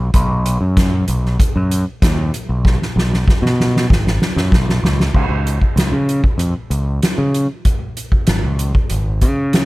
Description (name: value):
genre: psychedelic rock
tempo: 96 BPM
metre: 4/4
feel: straight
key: unclear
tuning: A4 = 441 Hz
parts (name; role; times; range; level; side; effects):
- growling fingered electric bass; bass; 0.0-9.7 s; Ab1 to Db3; -16 LUFS; equal; overdrive
- soft-mallet drum kit; drums; 0.1-9.7 s; crash cymbal, hi-hat, kick drum, snare drum; -16 LUFS; equal; none
room: little or no reverb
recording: none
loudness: -14 LUFS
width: side -20 dB against mid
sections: 0.0-5.1 A section; 5.1-9.7 B section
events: drum fill 2.6-5.1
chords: none